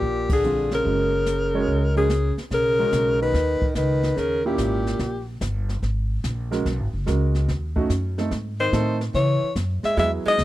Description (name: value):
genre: jazz, small-group swing and bop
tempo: 145 BPM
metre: 4/4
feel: swing 67% on 8ths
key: B major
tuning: A4 = 440 Hz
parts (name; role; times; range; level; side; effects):
- breathy alto saxophone; melody; 0.0-5.3, 8.6-10.4 s; G4 to E5; -23 LUFS; left 3 dB; none
- warm tenor saxophone; second line; 0.0-5.2, 8.6-10.4 s; A#2 to G#3; -28 LUFS; right 4 dB; none
- upright bass; bass; 0.0-10.4 s; Gb1 to C#3; -24 LUFS; equal; none
- jazz brush drum kit; drums; 0.0-10.4 s; brushed snare drum, hi-hat, kick drum, ride cymbal, snare drum; -29 LUFS; equal; none
- warm baby grand piano; accompaniment; 0.4-10.4 s; D3 to Db5; -27 LUFS; right 4 dB; none
room: small room ambience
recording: dry, close 1970s-style studio recording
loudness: -20 LUFS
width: side -15 dB against mid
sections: 0.0-2.5 A section; 2.5-10.4 B section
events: band accent 0.2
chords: 0.0 Ebmaj7 (rootless); 0.9 Gbadd9; 2.5 Bmaj9; 4.2 D#7b9; 5.8 G#7sus2; 7.5 D#m7b5; 8.3 G#; 9.1 C#m7